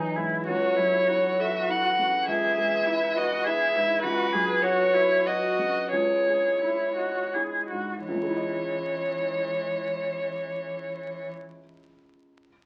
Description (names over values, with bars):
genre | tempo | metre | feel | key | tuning
neoclassical piano and strings | 80-104 BPM | 3/4 | rubato | C# minor | A4 = 439 Hz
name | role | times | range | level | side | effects
rich violin | melody | 0.0-11.3 s | G#4 to F#5 | -28 LUFS | equal | none
rich cello | second line | 0.0-11.3 s | E3 to G#4 | -32 LUFS | equal | none
felt-muted upright piano | accompaniment | 0.0-12.5 s | C#2 to D#5 | -35 LUFS | equal | none
warbly tape-like pad | sustained chords | 0.0-11.3 s | E3 to D#5 | -39 LUFS | equal | chorus, built-in reverb
room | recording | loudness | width
wet club reverb, RT60 0.6 s | very old 78 rpm record, vinyl crackle | -26 LUFS | mono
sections
0.0-8.1 A section; 8.1-12.5 B section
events
slowing down 3.2-8.1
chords
0.5 A6/C#; 2.3 C#m7; 4.0 Bsus2/C#; 5.9 C#madd9